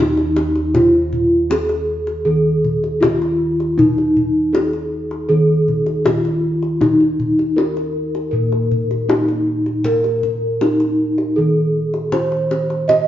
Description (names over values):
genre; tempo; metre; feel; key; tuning
Javanese gamelan; 79 BPM; 4/4; straight; Eb pelog barang; A4 = 444 Hz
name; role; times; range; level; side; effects
gamelan-type bronze metallophone; melody; 0.0-13.1 s; Eb4 to Eb5; -18 LUFS; equal; none
gamelan-type bossed gongs; bass; 0.0-13.1 s; Eb2 to Eb5; -18 LUFS; equal; none
kendang; percussion; 0.2-13.1 s; none; -22 LUFS; left 2 dB; none
room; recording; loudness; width
wet stone room reverb, RT60 1.3 s; band playing live in one room, nothing above 7.5 kHz; -15 LUFS; side -12 dB against mid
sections
0.0-13.1 A section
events
none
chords
none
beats
| 0.74 1.50 2.26 3.02 | 3.78 4.54 5.30 6.06 | 6.82 7.58 8.34 9.10 | 9.86 10.62 11.38 12.13 | 12.89